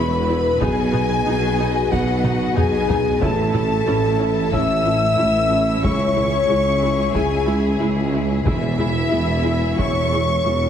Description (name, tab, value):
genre	cinematic, epic orchestral film score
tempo	92 BPM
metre	4/4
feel	straight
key	A lydian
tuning	A4 = 439 Hz
part	warm symphonic violin section	melody	0.0-10.7 s	E5 to E6	-32 LUFS	left 4 dB	none
part	clear symphonic violin section	second line	0.0-10.7 s	E5 to E6	-29 LUFS	left 2 dB	none
part	hollow concert flute	second line	0.0-10.7 s	E5 to E6	-29 LUFS	left 2 dB	none
part	rich symphonic viola section	accompaniment	0.0-10.5 s	G#3 to E4	-28 LUFS	equal	none
part	dark French horn section	sustained chords	0.0-10.7 s	E4 to E5	-22 LUFS	left 3 dB	none
part	warm studio string section	sustained chords	0.0-10.7 s	G#3 to E5	-28 LUFS	left 1 dB	none
part	mellow tuba	bass	0.0-10.7 s	E1 to C#2	-25 LUFS	right 2 dB	none
part	rich symphonic cello section	bass	0.0-10.7 s	C#2 to B2	-25 LUFS	right 2 dB	none
part	warm symphonic double bass section	bass	0.0-10.7 s	E1 to C#2	-26 LUFS	right 3 dB	none
part	taiko ensemble	drums	0.6-10.4 s	none	-25 LUFS	equal	none
room	wet concert hall reverb, RT60 2.0 s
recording	heavily compressed radio sound, multiband compression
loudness	-16 LUFS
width	side -8 dB against mid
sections	0.0-10.7 A section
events	drum fill 2.2-3.2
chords	0.0 E; 0.6 B; 3.2 A; 5.8 C#m; 8.5 E